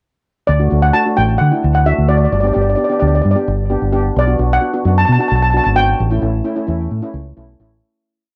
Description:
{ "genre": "calypso", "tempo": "131 BPM", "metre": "4/4", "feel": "straight", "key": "D major", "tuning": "A4 = 440 Hz", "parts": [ { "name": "steel pan", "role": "melody", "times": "0.5-7.6 s", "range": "D5 to A5", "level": "-19 LUFS", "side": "equal", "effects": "cassette tape, tape echo" }, { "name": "deep dub fingered electric bass", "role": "bass", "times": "0.5-7.8 s", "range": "G1 to D3", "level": "-17 LUFS", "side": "equal", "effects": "none" }, { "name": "steel pan", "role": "accompaniment", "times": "0.6-7.8 s", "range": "A3 to G4", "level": "-22 LUFS", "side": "equal", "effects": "cassette tape" } ], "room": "moderate studio ambience, RT60 0.5 s", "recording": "home recording on cassette", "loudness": "-15 LUFS", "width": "mono", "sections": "0.5-7.8 verse", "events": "fade-out 6.0-7.8", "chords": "0.5 D; 2.3 G; 4.2 Bm; 6.0 A7" }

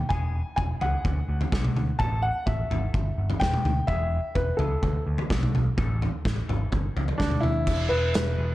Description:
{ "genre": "indie rock", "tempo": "127 BPM", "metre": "4/4", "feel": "straight", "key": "E mixolydian", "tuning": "A4 = 438 Hz", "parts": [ { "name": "warm upright piano", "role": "melody", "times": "0.0-8.5 s", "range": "D4 to A5", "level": "-29 LUFS", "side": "left 1 dB", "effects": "analog delay" }, { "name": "twangy electric guitar", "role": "riff", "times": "0.1-8.5 s", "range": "D3 to A4", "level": "-44 LUFS", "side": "left 3 dB", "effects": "analog delay" }, { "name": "overdriven picked electric bass", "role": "bass", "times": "0.1-8.5 s", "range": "E1 to D#2", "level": "-27 LUFS", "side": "equal", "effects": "none" }, { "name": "loose indie drum kit", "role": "drums", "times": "0.1-8.3 s", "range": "crash cymbal, hi-hat, kick drum, snare drum, toms", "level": "-27 LUFS", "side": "equal", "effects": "none" } ], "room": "light reverb, studio reverb", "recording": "echo-heavy mix, cassette tape", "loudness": "-23 LUFS", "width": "side -16 dB against mid", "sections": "0.0-7.7 A section", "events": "none", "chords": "0.1 E; 1.1 D; 2.0 A; 2.9 G; 3.9 E; 4.8 D; 5.8 A; 6.7 A7/G; 7.2 D; 7.7 E" }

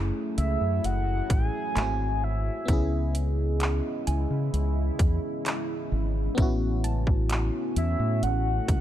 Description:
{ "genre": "contemporary R&B", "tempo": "65 BPM", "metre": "4/4", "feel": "straight", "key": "C# minor", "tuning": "A4 = 440 Hz", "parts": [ { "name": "FM electric piano", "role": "accompaniment", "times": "0.0-8.8 s", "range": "A3 to G#4", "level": "-33 LUFS", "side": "left 2 dB", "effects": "chorus" }, { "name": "deep dark ambient pad", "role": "sustained chords", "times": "0.0-8.8 s", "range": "C#3 to G#4", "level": "-34 LUFS", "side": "right 1 dB", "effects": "chorus, built-in reverb, sidechain pumping" }, { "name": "deep dub fingered electric bass", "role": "bass", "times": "0.0-8.8 s", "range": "F#1 to C#3", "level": "-26 LUFS", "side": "equal", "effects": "none" }, { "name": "soft round pluck", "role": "texture", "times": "0.0-8.8 s", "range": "E5 to D#6", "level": "-45 LUFS", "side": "right 2 dB", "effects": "chorus, ping-pong delay" }, { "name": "soft octave-layered synth lead", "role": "melody", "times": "0.4-8.8 s", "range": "E5 to G#5", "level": "-32 LUFS", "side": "right 1 dB", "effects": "chorus, phaser, ping-pong delay" }, { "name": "trap drum kit", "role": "drums", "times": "0.4-8.8 s", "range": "handclaps, hi-hat, kick drum", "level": "-26 LUFS", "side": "equal", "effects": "none" } ], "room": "digital ambience", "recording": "dark, warm production", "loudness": "-24 LUFS", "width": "side -12 dB against mid", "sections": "0.0-8.8 A section", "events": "none", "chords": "0.0 F#m9; 1.8 G#7b13; 2.7 C#m7; 6.4 A6" }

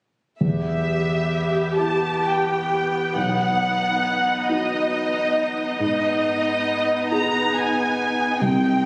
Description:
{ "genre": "cinematic, emotional film score for orchestra", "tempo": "45 BPM (dotted quarters)", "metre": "6/8", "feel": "rubato", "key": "E harmonic minor", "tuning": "A4 = 440 Hz", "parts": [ { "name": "dark studio violin section", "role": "melody", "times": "0.4-8.9 s", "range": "D#5 to A#5", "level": "-25 LUFS", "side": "equal", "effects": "none" }, { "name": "dark grand piano", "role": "accompaniment", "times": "0.4-8.9 s", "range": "B1 to G#4", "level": "-28 LUFS", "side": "equal", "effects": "none" }, { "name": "rich studio viola section", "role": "accompaniment", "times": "0.4-8.9 s", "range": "B3 to G4", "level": "-27 LUFS", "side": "equal", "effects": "none" } ], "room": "wet scoring stage reverb, RT60 1.6 s", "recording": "recorded on a phone in the room, studio reverb", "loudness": "-22 LUFS", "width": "mono", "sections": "0.4-8.9 A section", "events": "none", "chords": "0.4 Em; 3.1 B; 5.8 G#m" }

